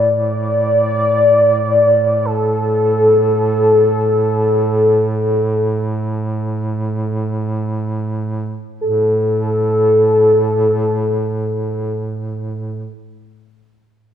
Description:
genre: caucasian folk, Caucasian lament.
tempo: free time.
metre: none.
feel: none.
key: unclear.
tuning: A4 = 436 Hz.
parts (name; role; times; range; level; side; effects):
warm velvety synth lead; melody; 0.0-12.9 s; A4 to D5; -14 LUFS; left 1 dB; chorus.
warm duduk; drone; 0.0-12.9 s; A2; -20 LUFS; right 2 dB; none.
room: light reverb.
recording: dark, warm production.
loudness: -14 LUFS.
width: side -9 dB against mid.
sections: 0.0-8.8 A section; 8.8-13.8 B section.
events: slowing down 0.0-8.8.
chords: none.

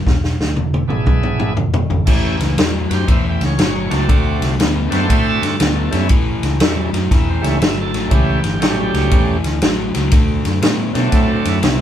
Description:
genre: electric blues shuffle.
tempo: 119 BPM.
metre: 4/4.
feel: swing 65% on 8ths.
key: A mixolydian.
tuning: A4 = 440 Hz.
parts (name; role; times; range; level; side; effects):
overdriven semi-hollow guitar; riff; 0.0-11.8 s; E2 to B3; -21 LUFS; left 3 dB; none.
fingered electric bass; bass; 0.0-11.8 s; E1 to B2; -20 LUFS; equal; none.
vintage drum kit; drums; 0.1-11.8 s; crash cymbal, kick drum, ride cymbal, snare drum, toms; -16 LUFS; equal; none.
bright tonewheel organ; accompaniment; 0.9-11.8 s; F#3 to A5; -21 LUFS; right 3 dB; slow rotary speaker, overdrive.
room: moderate studio ambience, RT60 0.5 s.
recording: band playing live in one room.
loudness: -14 LUFS.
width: side -10 dB against mid.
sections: 0.0-2.1 A section; 2.1-11.8 B section.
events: drum fill 0.1-2.1.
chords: 0.1 E7; 2.1 A7; 4.1 D7; 6.1 A7; 10.1 D7.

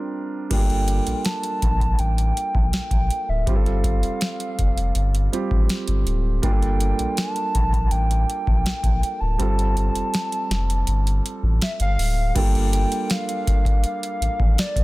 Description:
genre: contemporary R&B.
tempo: 81 BPM.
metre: 4/4.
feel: straight.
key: G minor.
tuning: A4 = 441 Hz.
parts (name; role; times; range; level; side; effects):
warm concert grand piano; accompaniment; 0.0-14.8 s; G3 to Bb4; -28 LUFS; right 4 dB; none.
hollow clarinet-like synth lead; melody; 0.5-14.8 s; D5 to A5; -27 LUFS; equal; chorus, tape echo.
warm sub bass; bass; 0.5-14.8 s; D1 to Bb1; -22 LUFS; equal; none.
booming analog drum machine; drums; 0.5-14.8 s; crash cymbal, hi-hat, kick drum, snare drum; -22 LUFS; equal; overdrive.
room: little or no reverb.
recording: dense, heavily limited modern master.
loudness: -19 LUFS.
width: side -19 dB against mid.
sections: 0.5-12.4 A section; 12.4-14.8 B section.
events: break 0.0-0.5; kick muted 9.4-12.4.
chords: 0.0 C7sus4; 0.5 Gm7; 3.5 F; 6.4 Gm7; 9.4 F; 12.4 Gm7.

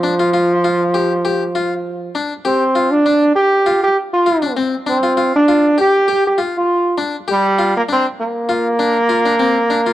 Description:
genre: afrobeat.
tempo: 100 BPM.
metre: 4/4.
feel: swing 54% on 16ths.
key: G minor.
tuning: A4 = 440 Hz.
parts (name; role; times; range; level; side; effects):
brilliant trombone; melody; 0.0-9.9 s; F3 to G4; -14 LUFS; right 1 dB; none.
harpsichord; arpeggios; 0.0-9.9 s; C4 to G4; -20 LUFS; left 4 dB; none.
room: light reverb, small room ambience.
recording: dry, close 1970s-style studio recording.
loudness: -13 LUFS.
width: side -14 dB against mid.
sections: 0.0-9.9 A section.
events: none.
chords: 0.0 G7(no3).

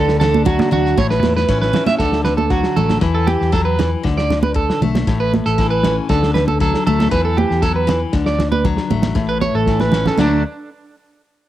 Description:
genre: highlife guitar band.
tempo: 117 BPM.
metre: 4/4.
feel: straight.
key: D major.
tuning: A4 = 440 Hz.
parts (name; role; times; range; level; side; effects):
picked steel-string acoustic guitar; accompaniment; 0.0-10.4 s; A2 to F#4; -21 LUFS; left 6 dB; none.
electric guitar at the edge of break-up; arpeggios; 0.0-10.4 s; D4 to E5; -19 LUFS; right 4 dB; harmonic tremolo, tape echo.
fingered electric bass; bass; 0.0-10.4 s; A1 to D3; -20 LUFS; left 1 dB; none.
warm soul drum kit; drums; 0.1-10.3 s; kick drum, snare drum; -22 LUFS; left 1 dB; cassette tape.
congas; percussion; 0.2-10.4 s; none; -20 LUFS; right 5 dB; none.
room: light reverb, studio reverb.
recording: home recording on cassette.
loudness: -14 LUFS.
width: side -13 dB against mid.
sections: 0.0-2.0 A section; 2.0-10.2 B section; 10.2-11.5 C section.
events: drum fill 1.0-2.0, 9.7-10.2.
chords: 0.0 D; 1.0 Aadd9; 2.0 D; 3.0 Em; 4.0 D5; 5.1 Aadd9; 6.1 D; 7.1 Em; 8.1 D; 9.2 Aadd9; 10.2 D.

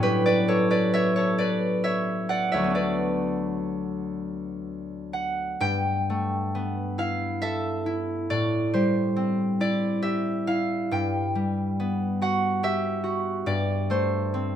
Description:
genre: classical, solo harp piece.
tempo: 62-73 BPM.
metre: 3/4.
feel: rubato.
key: D major, G major from 5.6 s.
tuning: A4 = 442 Hz.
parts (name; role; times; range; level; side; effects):
concert harp; solo; 0.0-14.6 s; D2 to G5; -23 LUFS; equal; none.
room: light reverb.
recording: none.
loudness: -23 LUFS.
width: side -9 dB against mid.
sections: 0.0-5.6 A section; 5.6-14.6 B section.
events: none.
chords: 0.0 A13; 2.8 D6; 5.6 G69; 8.3 Am7; 10.9 Gmaj7; 13.5 Am7/G.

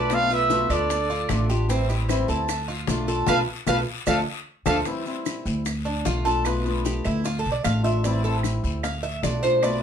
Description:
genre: latin, Cuban son and guajira.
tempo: 151 BPM.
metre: 4/4.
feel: straight.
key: unclear.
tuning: A4 = 440 Hz.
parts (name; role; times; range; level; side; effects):
warm trumpet; melody; 0.0-4.8 s; D5 to F5; -24 LUFS; equal; none.
breathy bright jazz flute; second line; 0.0-4.8 s; A4 to D5; -30 LUFS; right 5 dB; none.
fingerpicked swing-style acoustic guitar; accompaniment; 0.0-9.8 s; B2 to F4; -28 LUFS; left 4 dB; none.
Cuban tres; arpeggios; 0.0-9.8 s; C4 to F5; -27 LUFS; right 2 dB; none.
upright bass; bass; 0.0-9.8 s; A1 to D2; -26 LUFS; equal; none.
bongos; percussion; 0.1-9.8 s; none; -31 LUFS; left 6 dB; none.
claves; percussion; 0.1-9.8 s; none; -36 LUFS; right 7 dB; none.
guiro; percussion; 0.1-9.8 s; none; -38 LUFS; left 6 dB; none.
maracas; percussion; 0.1-9.8 s; none; -39 LUFS; right 7 dB; none.
room: wet studio reverb, RT60 0.5 s.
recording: heard from further back in the room.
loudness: -21 LUFS.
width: side -8 dB against mid.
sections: 0.0-4.9 A section; 4.9-9.8 B section.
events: band accent 3.3-4.9; drum fill 4.5-4.9; Cuban tres solo 4.9-9.8.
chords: 0.0 Bm7b5; 0.9 Dm; 1.7 Am7; 2.5 Bm7b5; 4.1 Dm; 4.9 D9sus4; 5.7 Bm7b5; 7.2 Dm; 8.0 Am7; 8.8 Bm7b5.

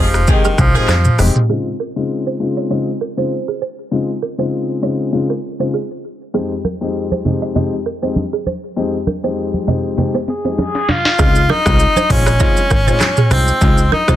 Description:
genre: afrobeats.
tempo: 99 BPM.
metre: 4/4.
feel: swing 55% on 16ths.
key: unclear.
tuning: A4 = 440 Hz.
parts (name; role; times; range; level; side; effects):
breathy tenor saxophone; melody; 0.0-1.2, 10.3-14.2 s; Eb3 to Ab4; -17 LUFS; equal; ping-pong delay.
mellow horn section; second line; 0.0-0.9 s; F3 to Ab4; -25 LUFS; right 1 dB; none.
warm baby grand piano; accompaniment; 0.0-14.2 s; F2 to G4; -20 LUFS; left 4 dB; none.
balafon; riff; 0.0-14.2 s; Ab4 to Eb5; -24 LUFS; right 9 dB; ping-pong delay.
plucky analog bass; bass; 0.0-1.3, 11.2-14.2 s; F1 to F2; -15 LUFS; equal; none.
afro-pop drum kit; drums; 0.1-1.5, 10.0-14.2 s; handclaps, hi-hat, kick drum, rim click, shaker, snare drum, toms; -16 LUFS; equal; none.
congas; percussion; 0.3-1.3, 6.6-14.1 s; none; -21 LUFS; right 1 dB; none.
room: light reverb, small room ambience.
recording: dense, heavily limited modern master, low-pass filter.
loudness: -14 LUFS.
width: side -12 dB against mid.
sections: 0.0-1.5 A section; 1.5-11.2 B section; 11.2-14.2 A section.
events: band accent 0.0-1.5; filter sweep 1.5-11.2; drum fill 10.0-11.2.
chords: 0.0 Fm7; 1.5 Dbmaj7; 6.3 Fm7; 11.2 Dbmaj7.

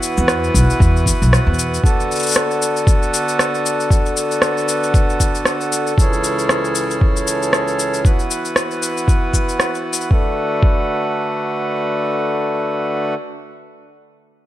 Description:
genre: folktronica.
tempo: 116 BPM.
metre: 4/4.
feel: swing 56% on 16ths.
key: B dorian.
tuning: A4 = 440 Hz.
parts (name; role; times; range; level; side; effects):
hand-pumped harmonium; sustained chords; 0.0-13.1 s; C#2 to B4; -19 LUFS; equal; vintage 12-bit sampler grit.
electronic cabasa and rim click; drums; 0.0-10.1 s; none; -20 LUFS; left 1 dB; none.
upright bass; bass; 0.2-1.8 s; B1 to E2; -15 LUFS; equal; none.
electronic kick drum; drums; 0.5-10.8 s; none; -15 LUFS; equal; none.
room: light reverb, small room ambience.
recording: none.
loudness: -15 LUFS.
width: side -14 dB against mid.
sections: 0.0-10.1 A section; 10.1-14.2 B section.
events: none.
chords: 0.0 Esus2; 1.8 Bm7; 6.0 Amaj7/C#; 8.0 Esus2; 10.1 Bm7.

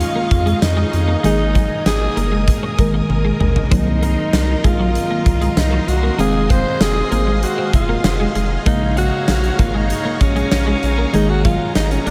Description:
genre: 1980s-style pop.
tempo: 97 BPM.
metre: 4/4.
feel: straight.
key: unclear.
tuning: A4 = 440 Hz.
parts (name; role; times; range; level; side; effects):
breathy alto saxophone; melody; 0.0-12.1 s; Db4 to C5; -24 LUFS; equal; delay.
mellow FM electric piano; accompaniment; 0.0-12.1 s; Db3 to F5; -25 LUFS; equal; chorus, phaser.
string machine, violins; sustained chords; 0.0-12.1 s; Ab4 to Eb6; -30 LUFS; equal; ensemble chorus.
round analog bass; bass; 0.0-12.1 s; F1 to F2; -22 LUFS; equal; none.
huge arena drum kit; drums; 0.0-12.1 s; hi-hat, kick drum, snare drum, toms; -22 LUFS; equal; none.
twelve-string electric guitar; riff; 0.2-12.1 s; Gb3 to Eb4; -27 LUFS; equal; ensemble chorus, delay.
room: moderate huge ambient reverb, RT60 7.7 s.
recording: dreamy mix soaked in reverb.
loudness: -17 LUFS.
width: mono.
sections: 0.0-12.1 A section.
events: drum fill 3.1-3.7.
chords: 0.0 Dbadd9; 1.2 Absus2; 3.7 Cm7b5; 6.2 Fm7; 8.7 Bbm7; 11.1 Absus2.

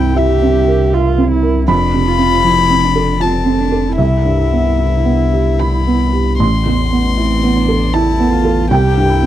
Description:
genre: neoclassical piano and strings.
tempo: 78 BPM.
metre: 3/4.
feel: rubato.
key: unclear.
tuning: A4 = 440 Hz.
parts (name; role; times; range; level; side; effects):
warm violin; melody; 0.0-9.3 s; E5 to C6; -18 LUFS; left 9 dB; none.
dark cello; second line; 0.0-9.3 s; C4 to G4; -19 LUFS; right 5 dB; none.
felt-muted upright piano; accompaniment; 0.0-9.3 s; A1 to C6; -14 LUFS; right 2 dB; none.
saturated sub bass; bass; 0.0-9.3 s; F1 to C2; -17 LUFS; left 1 dB; none.
room: light reverb.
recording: dry, close 1970s-style studio recording.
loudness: -11 LUFS.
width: side -12 dB against mid.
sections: 0.0-9.3 A section.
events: none.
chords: 0.0 C7; 1.7 F; 4.0 Cmaj7; 6.4 Amadd9; 8.7 C.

